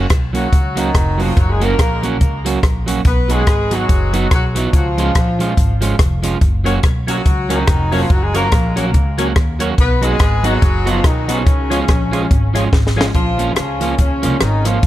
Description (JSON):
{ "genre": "ska", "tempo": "143 BPM", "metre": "4/4", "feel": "swing 58% on 8ths", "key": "unclear", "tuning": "A4 = 440 Hz", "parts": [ { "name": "electric guitar at the edge of break-up", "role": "accompaniment", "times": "0.0-14.8 s", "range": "F3 to Gb4", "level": "-22 LUFS", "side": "right 4 dB", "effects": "tape echo" }, { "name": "upright bass", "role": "bass", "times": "0.0-14.9 s", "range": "F1 to Eb2", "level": "-19 LUFS", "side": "equal", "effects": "none" }, { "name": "compact cocktail drum kit", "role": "drums", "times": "0.1-14.9 s", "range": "hi-hat, kick drum, rim click, snare drum", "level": "-15 LUFS", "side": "equal", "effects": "none" }, { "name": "dark horn section", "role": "melody", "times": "0.3-14.9 s", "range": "Db3 to Cb5", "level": "-21 LUFS", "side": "left 1 dB", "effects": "tape echo" }, { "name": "percussive tonewheel organ", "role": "stabs", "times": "6.7-13.1 s", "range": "Db4 to Eb5", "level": "-25 LUFS", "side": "left 3 dB", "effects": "overdrive, slow rotary speaker" } ], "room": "light reverb, small room ambience", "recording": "none", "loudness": "-13 LUFS", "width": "side -14 dB against mid", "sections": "0.0-13.1 A section; 13.1-14.9 B section", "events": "drum fill 12.7-13.1", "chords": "0.0 Gb; 3.1 Cb; 4.7 Db; 6.4 Gb; 9.8 Cb; 11.5 Db; 13.1 Bbm" }